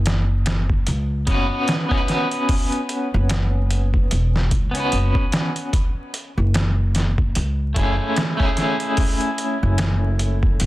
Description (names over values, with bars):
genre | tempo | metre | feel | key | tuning
trip hop | 74 BPM | 4/4 | swing 57% on 16ths | F# minor | A4 = 441 Hz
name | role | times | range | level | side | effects
upright bass | bass | 0.0-10.7 s | E1 to C#2 | -20 LUFS | equal | tube saturation
trip hop sampler-style drum kit | drums | 0.1-10.7 s | hi-hat, kick drum, snare drum | -21 LUFS | equal | none
electric guitar at the edge of break-up | accompaniment | 1.3-10.7 s | A3 to B4 | -23 LUFS | equal | tremolo, tape echo
room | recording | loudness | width
little or no reverb | dense, heavily limited modern master, vinyl crackle | -18 LUFS | side -17 dB against mid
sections
0.0-10.7 A section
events
none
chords
0.0 Bsus2/F#; 5.7 F#m7